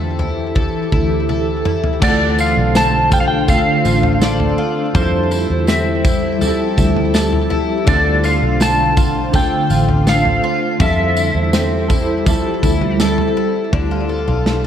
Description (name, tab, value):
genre	dream pop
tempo	82 BPM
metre	4/4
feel	straight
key	D minor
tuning	A4 = 440 Hz
part	clean lap steel guitar	melody	0.0-13.0 s	C5 to A5	-19 LUFS	equal	analog chorus, tape echo
part	ethereal airy pad	sustained chords	0.0-14.7 s	D3 to A5	-20 LUFS	equal	ensemble chorus, built-in reverb, phaser
part	picked twelve-string acoustic guitar	arpeggios	0.0-14.7 s	D3 to A4	-23 LUFS	left 4 dB	analog chorus, tape echo
part	vintage muted fingered electric bass	bass	0.0-14.7 s	A1 to F2	-20 LUFS	equal	none
part	loose indie drum kit	drums	0.2-14.6 s	crash cymbal, kick drum, snare drum, tambourine, toms	-18 LUFS	equal	none
part	clean electric guitar	accompaniment	2.0-14.2 s	D3 to A4	-22 LUFS	right 2 dB	tremolo, lush chorus
room	moderate plate reverb, RT60 2.5 s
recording	dreamy mix soaked in reverb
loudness	-13 LUFS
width	side -9 dB against mid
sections	0.0-2.0 A section; 2.0-13.7 B section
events	drum fill 1.3-2.0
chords	0.0 Fmaj9 (rootless); 2.0 Dm7; 4.9 Fmaj9; 7.9 Dm7; 10.8 Fmaj9; 13.7 Dm7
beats	0.56 1.29 | 2.02 2.75 3.48 4.22 | 4.95 5.68 6.41 7.14 | 7.87 8.61 9.34 10.07 | 10.80 11.53 12.27 13.00 | 13.73 14.46